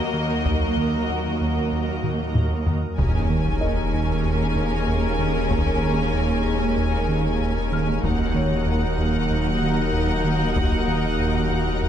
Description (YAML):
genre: cinematic, hybrid orchestral and electronic film score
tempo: 95 BPM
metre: 4/4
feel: straight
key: Eb minor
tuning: A4 = 440 Hz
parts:
  - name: rich symphonic violin section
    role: second line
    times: 0.0-11.9 s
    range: Bb4 to Eb5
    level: -33 LUFS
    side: left 4 dB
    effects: none
  - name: clear symphonic viola section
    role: accompaniment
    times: 0.0-11.9 s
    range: Bb3 to Gb4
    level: -31 LUFS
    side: left 1 dB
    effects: none
  - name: mellow French horn section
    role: sustained chords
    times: 0.0-11.9 s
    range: Bb3 to Ab4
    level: -34 LUFS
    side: left 3 dB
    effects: none
  - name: shimmering ambient pad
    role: sustained chords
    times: 0.0-11.9 s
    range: Gb3 to Bb4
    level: -31 LUFS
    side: equal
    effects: chorus, built-in reverb
  - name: clear symphonic double bass section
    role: bass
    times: 0.0-11.9 s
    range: Eb2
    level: -29 LUFS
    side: right 2 dB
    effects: none
  - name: rich symphonic cello section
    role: bass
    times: 0.0-11.9 s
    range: Eb2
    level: -28 LUFS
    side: right 2 dB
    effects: none
  - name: felt-muted upright piano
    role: texture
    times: 0.0-11.9 s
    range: Eb4 to F6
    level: -36 LUFS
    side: left 4 dB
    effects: none
  - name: round analog bass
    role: riff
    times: 0.1-11.9 s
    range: Eb2 to Eb3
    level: -27 LUFS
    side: right 1 dB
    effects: none
  - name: taiko ensemble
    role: drums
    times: 0.5-11.2 s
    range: none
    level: -27 LUFS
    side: left 1 dB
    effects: none
  - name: rich symphonic violin section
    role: melody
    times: 3.0-11.9 s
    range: Gb5 to Ab5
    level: -31 LUFS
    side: left 3 dB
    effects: none
  - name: mellow tuba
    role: bass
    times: 3.0-11.9 s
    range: Eb2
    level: -30 LUFS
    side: right 4 dB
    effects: none
  - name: saturated sub bass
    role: bass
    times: 3.0-11.9 s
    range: Eb1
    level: -28 LUFS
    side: left 1 dB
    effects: none
  - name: sub drop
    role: sound effects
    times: 3.0-5.5 s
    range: none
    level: -27 LUFS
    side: left 1 dB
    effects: none
room: light reverb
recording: close, detailed microphones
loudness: -20 LUFS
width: side -9 dB against mid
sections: 0.0-3.0 A section; 3.0-11.9 A section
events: drum fill 2.0-3.0; impact 3.0-5.5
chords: 0.0 Ebm; 3.0 Bbm7/Eb; 8.0 Ebm